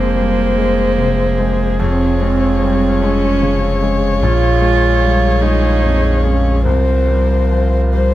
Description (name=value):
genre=neoclassical piano and strings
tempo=49 BPM (dotted quarters)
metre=6/8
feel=rubato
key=F minor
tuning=A4 = 440 Hz
part: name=dark violin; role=melody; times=0.0-8.1 s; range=C5 to Db5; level=-19 LUFS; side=left 4 dB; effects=none
part: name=dark cello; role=second line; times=0.0-7.9 s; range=Bb3 to F4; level=-19 LUFS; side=right 5 dB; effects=none
part: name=clear concert grand piano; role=accompaniment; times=0.0-8.1 s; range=Bb1 to Ab3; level=-19 LUFS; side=left 2 dB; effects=none
part: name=dark viola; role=accompaniment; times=0.0-8.1 s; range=Ab4 to Bb4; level=-26 LUFS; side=right 4 dB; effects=none
part: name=pedal harmonium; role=sustained chords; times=0.0-8.1 s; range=F3 to G5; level=-27 LUFS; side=right 2 dB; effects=none
part: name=pure sine sub bass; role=bass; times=0.0-8.1 s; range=F1 to C2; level=-16 LUFS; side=equal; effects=none
room=little or no reverb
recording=close, detailed microphones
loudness=-12 LUFS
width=side -14 dB against mid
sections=0.0-8.1 A section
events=none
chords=0.0 Fmadd9; 1.8 Dbmaj7/F; 4.2 Bbm7; 6.7 C7sus4